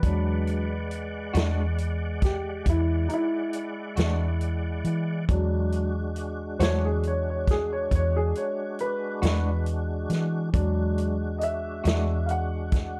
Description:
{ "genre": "slow blues", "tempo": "46 BPM (dotted quarters)", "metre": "12/8", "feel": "straight", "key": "E mixolydian", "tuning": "A4 = 440 Hz", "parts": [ { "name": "warm baby grand piano", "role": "accompaniment", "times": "0.0-13.0 s", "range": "F#3 to F#5", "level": "-32 LUFS", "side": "equal", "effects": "plate reverb" }, { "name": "tonewheel organ", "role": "sustained chords", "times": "0.0-13.0 s", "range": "G#3 to F#5", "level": "-37 LUFS", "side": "equal", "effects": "slow rotary speaker, overdrive, chorus vibrato, plate reverb" }, { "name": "vintage muted fingered electric bass", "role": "bass", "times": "0.0-13.0 s", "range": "E2 to E3", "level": "-29 LUFS", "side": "equal", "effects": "none" }, { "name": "vintage drum kit", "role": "drums", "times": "0.0-12.9 s", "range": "hi-hat, kick drum, snare drum", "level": "-29 LUFS", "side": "equal", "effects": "none" }, { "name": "electric guitar through a small old amp", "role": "accompaniment", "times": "1.3-12.1 s", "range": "E3 to F#4", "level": "-35 LUFS", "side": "equal", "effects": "tremolo, plate reverb" } ], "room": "light reverb", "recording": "dark, warm production", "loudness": "-27 LUFS", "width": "mono", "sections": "0.0-13.0 A section", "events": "grand piano solo 0.0-13.0", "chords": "0.0 E9" }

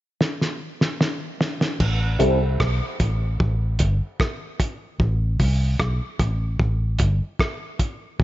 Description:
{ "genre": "dub reggae", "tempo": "75 BPM", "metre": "4/4", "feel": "straight", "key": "A minor", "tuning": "A4 = 441 Hz", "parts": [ { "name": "cloth-damped thuddy drum kit", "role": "drums", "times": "0.2-8.2 s", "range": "crash cymbal, hi-hat, kick drum, rim click, snare drum", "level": "-23 LUFS", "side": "equal", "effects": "none" }, { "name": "vintage muted fingered electric bass", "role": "bass", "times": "1.8-8.2 s", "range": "G1 to C2", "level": "-21 LUFS", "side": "equal", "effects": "none" }, { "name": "electric guitar through a small old amp", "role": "accompaniment", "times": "2.2-2.4 s", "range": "G3 to A4", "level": "-27 LUFS", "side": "right 5 dB", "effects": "low-pass filter, dub echo" }, { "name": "filtered dub chord stab", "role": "stabs", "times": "2.2-2.4 s", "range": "E4 to C5", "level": "-27 LUFS", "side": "left 7 dB", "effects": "phaser, low-pass filter, dub echo" } ], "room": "small room ambience", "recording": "nothing above 7.6 kHz", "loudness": "-20 LUFS", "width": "side -15 dB against mid", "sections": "0.0-1.8 A section; 1.8-8.2 B section", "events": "drum fill 0.2-1.8", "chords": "0.0 N.C.; 1.8 Am" }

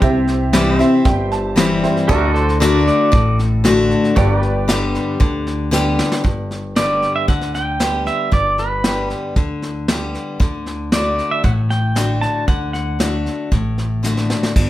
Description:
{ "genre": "honky-tonk and classic country", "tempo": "115 BPM", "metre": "4/4", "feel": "straight", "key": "G major", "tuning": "A4 = 440 Hz", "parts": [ { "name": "honky-tonk upright piano", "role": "accompaniment", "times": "0.0-6.2 s", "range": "F#4 to C6", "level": "-24 LUFS", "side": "right 4 dB", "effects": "none" }, { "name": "picked steel-string acoustic guitar", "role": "accompaniment", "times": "0.0-14.7 s", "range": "G2 to G4", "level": "-19 LUFS", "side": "left 2 dB", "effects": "none" }, { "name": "upright bass", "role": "bass", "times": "0.0-14.7 s", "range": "G1 to D2", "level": "-22 LUFS", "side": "right 1 dB", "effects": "none" }, { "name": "vintage brush drum kit", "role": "drums", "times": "0.0-14.7 s", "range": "crash cymbal, hi-hat, kick drum, snare drum", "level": "-19 LUFS", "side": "right 1 dB", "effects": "none" }, { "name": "pedal steel guitar", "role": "sustained chords", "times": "0.5-6.2 s", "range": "F#4 to E5", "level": "-25 LUFS", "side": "right 1 dB", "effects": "none" }, { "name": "pedal steel guitar", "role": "second line", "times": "2.1-3.4, 6.8-13.2 s", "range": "F#4 to A5", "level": "-20 LUFS", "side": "right 1 dB", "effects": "none" } ], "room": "moderate studio reverb, RT60 0.7 s", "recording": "none", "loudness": "-15 LUFS", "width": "side -14 dB against mid", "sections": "0.0-6.2 A section; 6.2-14.6 B section", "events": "honky-tonk piano fill 0.5-2.1; drum fill 5.7-6.2, 14.0-14.6; pedal steel guitar solo 6.2-14.6", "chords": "0.0 C; 2.1 D; 4.2 G; 10.4 D" }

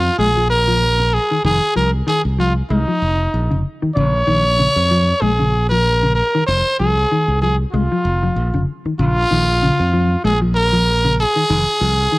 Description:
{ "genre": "afrobeat", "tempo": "95 BPM", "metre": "4/4", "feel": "swing 55% on 16ths", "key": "Bb minor", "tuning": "A4 = 445 Hz", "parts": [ { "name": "growling trumpet", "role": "melody", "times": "0.0-12.2 s", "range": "Eb4 to Db5", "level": "-17 LUFS", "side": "equal", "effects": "cassette tape" }, { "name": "mellow electric guitar", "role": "arpeggios", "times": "0.0-12.2 s", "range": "Db3 to Ab3", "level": "-21 LUFS", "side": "left 2 dB", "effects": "cassette tape" }, { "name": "modern bright fingered electric bass", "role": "bass", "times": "0.0-12.1 s", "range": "F1 to F2", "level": "-18 LUFS", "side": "equal", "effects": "none" } ], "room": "little or no reverb", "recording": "home recording on cassette, lossy compression artefacts", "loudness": "-14 LUFS", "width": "side -20 dB against mid", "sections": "0.0-12.2 A section", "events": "none", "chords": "0.0 Bb7(no3); 1.4 F7(no3); 4.0 Bbm; 6.5 Fm; 9.0 Bbm; 11.5 Fm7" }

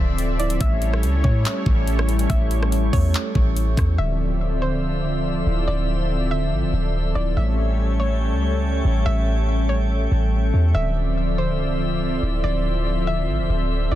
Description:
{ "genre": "hip hop, atmospheric cloud-rap", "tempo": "142 BPM", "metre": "4/4", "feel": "half-time", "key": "D minor", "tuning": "A4 = 439 Hz", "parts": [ { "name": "soft round pluck", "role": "melody", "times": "0.0-14.0 s", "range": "C5 to E5", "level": "-31 LUFS", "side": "left 1 dB", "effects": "chorus, low-pass filter, ping-pong delay" }, { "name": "warm analog pad", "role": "sustained chords", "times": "0.0-14.0 s", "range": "F3 to E5", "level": "-26 LUFS", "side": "left 1 dB", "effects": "chorus" }, { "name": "muted felt-like synth keys", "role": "arpeggios", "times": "0.0-14.0 s", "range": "D3 to A4", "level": "-31 LUFS", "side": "right 4 dB", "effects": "chorus, low-pass filter, ping-pong delay" }, { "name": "warm 808-style bass", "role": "bass", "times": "0.0-14.0 s", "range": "C1 to A2", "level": "-21 LUFS", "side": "equal", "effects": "none" }, { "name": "drifting glass-harmonics texture", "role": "texture", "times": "0.0-14.0 s", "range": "A3 to E6", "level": "-33 LUFS", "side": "equal", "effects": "chorus, built-in reverb" }, { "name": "trap drum kit", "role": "drums", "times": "0.2-3.9 s", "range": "handclaps, hi-hat, kick drum, rim click", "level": "-22 LUFS", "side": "equal", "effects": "none" } ], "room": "digital ambience", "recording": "dense, heavily limited modern master", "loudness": "-19 LUFS", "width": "side -13 dB against mid", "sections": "0.0-4.0 A section; 4.0-14.0 B section", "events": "none", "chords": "0.0 Dm9; 0.6 A7; 4.0 Dm9; 7.4 A7; 10.7 Dm9" }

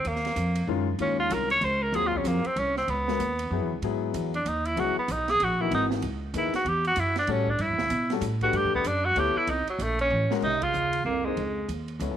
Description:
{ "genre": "modal jazz", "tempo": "191 BPM", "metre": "3/4", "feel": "swing 63% on 8ths", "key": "unclear", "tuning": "A4 = 440 Hz", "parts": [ { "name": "clear tenor saxophone", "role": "melody", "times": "0.0-11.7 s", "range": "F#3 to Db5", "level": "-26 LUFS", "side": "right 1 dB", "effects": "none" }, { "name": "upright bass", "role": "bass", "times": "0.0-12.2 s", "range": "G#1 to B2", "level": "-30 LUFS", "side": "right 1 dB", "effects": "none" }, { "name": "open jazz drum kit", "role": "drums", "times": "0.0-12.1 s", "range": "crash cymbal, hi-hat, kick drum, ride cymbal, snare drum", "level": "-40 LUFS", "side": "right 7 dB", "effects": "none" }, { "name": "warm concert grand piano", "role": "accompaniment", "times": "0.7-12.2 s", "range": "Eb3 to C#5", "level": "-31 LUFS", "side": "left 12 dB", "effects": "none" }, { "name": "mellow bass clarinet", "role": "second line", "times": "10.4-11.7 s", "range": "F2 to Db3", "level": "-33 LUFS", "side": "right 12 dB", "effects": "none" } ], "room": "light reverb, studio ambience", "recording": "1960s-style stereo with parts hard left and right", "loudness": "-24 LUFS", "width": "side -10 dB against mid", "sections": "0.0-2.9 A section; 2.9-10.4 A section; 10.4-12.2 B section", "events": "tenor saxophone solo 0.0-10.4; drum fill 10.1-10.4; band accent 10.6", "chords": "0.0 Ebm11; 2.9 C#m11; 6.7 Em11; 9.5 A; 10.4 Bbm11 (rootless)" }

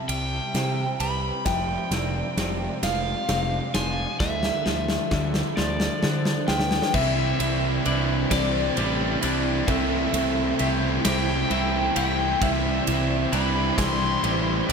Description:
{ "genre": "post-rock", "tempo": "44 BPM (dotted quarters)", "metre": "6/8", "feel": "straight", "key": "C major", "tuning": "A4 = 442 Hz", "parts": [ { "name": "overdriven electric guitar", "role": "melody", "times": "0.0-14.7 s", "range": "D5 to C6", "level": "-28 LUFS", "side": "left 1 dB", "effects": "phaser, diffuse ambient delay" }, { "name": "dark studio string section", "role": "sustained chords", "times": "0.0-14.7 s", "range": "F3 to G5", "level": "-37 LUFS", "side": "equal", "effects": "none" }, { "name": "twelve-string electric guitar", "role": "arpeggios", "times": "0.0-14.7 s", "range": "F2 to G4", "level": "-32 LUFS", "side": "left 1 dB", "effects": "lush chorus, diffuse ambient delay" }, { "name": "vibraphone with medium mallets", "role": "arpeggios", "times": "0.0-14.7 s", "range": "A4 to E5", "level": "-37 LUFS", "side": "right 6 dB", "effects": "diffuse ambient delay" }, { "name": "fuzz picked electric bass", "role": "bass", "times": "0.1-14.7 s", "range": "F1 to D3", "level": "-28 LUFS", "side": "equal", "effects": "overdrive" }, { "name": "big rock drum kit", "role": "drums", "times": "0.1-14.7 s", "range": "crash cymbal, kick drum, ride cymbal, snare drum", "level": "-28 LUFS", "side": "equal", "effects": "none" }, { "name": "distorted electric guitar", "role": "riff", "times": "6.9-14.7 s", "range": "C3 to E4", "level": "-28 LUFS", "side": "left 12 dB", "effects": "distortion" }, { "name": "distorted electric guitar", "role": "riff", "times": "6.9-14.7 s", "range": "C3 to E4", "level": "-28 LUFS", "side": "right 12 dB", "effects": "distortion" } ], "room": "moderate plate reverb, RT60 2.7 s", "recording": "dreamy mix soaked in reverb", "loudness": "-21 LUFS", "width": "side -6 dB against mid", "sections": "0.0-6.9 A section; 6.9-14.7 B section", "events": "build-up 0.0-6.9; drum fill 0.0-6.9", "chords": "0.0 Cmaj7; 1.5 Fm6; 4.2 Dmadd9; 6.9 Cadd9; 9.7 Am7/C; 12.4 Cadd9" }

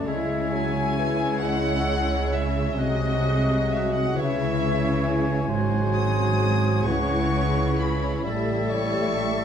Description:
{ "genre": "classical, slow romantic movement for symphony orchestra", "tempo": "44 BPM (dotted quarters)", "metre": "6/8", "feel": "rubato", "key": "unclear", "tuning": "A4 = 443 Hz", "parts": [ { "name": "rich chamber violin section", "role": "melody", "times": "0.0-9.4 s", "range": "D#5 to D#6", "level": "-30 LUFS", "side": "left 3 dB", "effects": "none" }, { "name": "mellow clarinet", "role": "second line", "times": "0.0-9.4 s", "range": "C#5 to G#5", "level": "-33 LUFS", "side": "left 1 dB", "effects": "none" }, { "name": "mellow cor anglais", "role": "second line", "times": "0.0-9.4 s", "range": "B#4 to E5", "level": "-36 LUFS", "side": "right 2 dB", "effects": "none" }, { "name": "rich chamber violin section", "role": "second line", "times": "0.0-9.4 s", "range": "G#4 to E5", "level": "-35 LUFS", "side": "left 1 dB", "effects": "none" }, { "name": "mellow bassoon", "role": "accompaniment", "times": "0.0-9.4 s", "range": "E3 to G#3", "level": "-32 LUFS", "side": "right 2 dB", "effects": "none" }, { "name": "rich chamber viola section", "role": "accompaniment", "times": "0.0-9.4 s", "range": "G3 to F#4", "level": "-35 LUFS", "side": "left 2 dB", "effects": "none" }, { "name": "dark French horn section", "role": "sustained chords", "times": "0.0-9.4 s", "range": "G#3 to G4", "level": "-31 LUFS", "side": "left 3 dB", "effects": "none" }, { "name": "concert harp", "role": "arpeggios", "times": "0.0-9.4 s", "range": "G#2 to G#4", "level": "-31 LUFS", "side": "left 9 dB", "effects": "none" }, { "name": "clear symphonic cello section", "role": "bass", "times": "0.0-9.4 s", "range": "G#2 to C#3", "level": "-29 LUFS", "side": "right 2 dB", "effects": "none" }, { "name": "rich chamber double bass section", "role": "bass", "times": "0.0-9.4 s", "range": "G#1 to C#2", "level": "-28 LUFS", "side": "right 4 dB", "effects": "none" }, { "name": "small flute group", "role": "second line", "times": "0.1-9.4 s", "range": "E6 to A6", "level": "-36 LUFS", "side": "left 1 dB", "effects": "none" } ], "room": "wet recital hall reverb, RT60 1.3 s", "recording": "dark, warm production", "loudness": "-21 LUFS", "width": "side -8 dB against mid", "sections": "0.0-9.4 A section", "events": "none", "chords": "0.1 C#m; 2.8 G#7/B#; 4.2 C#m; 5.5 G#7; 6.9 C#m; 8.2 A7" }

